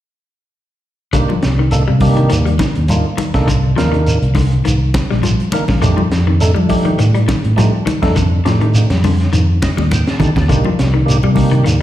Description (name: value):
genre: afrobeat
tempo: 103 BPM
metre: 4/4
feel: swing 54% on 16ths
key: C dorian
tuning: A4 = 440 Hz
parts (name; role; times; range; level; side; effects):
- percussive tonewheel organ; accompaniment; 1.1-11.7 s; A3 to A5; -21 LUFS; right 2 dB; slow rotary speaker, chorus vibrato, plate reverb, slapback echo
- clean electric guitar; arpeggios; 1.1-11.8 s; D3 to G3; -19 LUFS; left 5 dB; plate reverb, slapback echo
- fingered electric bass; bass; 1.1-11.8 s; Bb1 to F3; -14 LUFS; equal; none
- crunchy breakbeat drum kit; drums; 1.1-11.8 s; hi-hat, kick drum, snare drum; -20 LUFS; equal; none
- shekere; percussion; 1.1-11.8 s; none; -21 LUFS; right 1 dB; slapback echo
- congas; percussion; 1.3-11.5 s; none; -20 LUFS; equal; slapback echo
room: light reverb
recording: live gig heard through the venue's PA, recital hall reverb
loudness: -11 LUFS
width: side -13 dB against mid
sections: 1.1-11.8 A section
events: tonewheel organ fill 9.3-10.5; drum fill 9.8-10.5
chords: 1.1 Cm9; 5.8 F13; 10.5 Cm9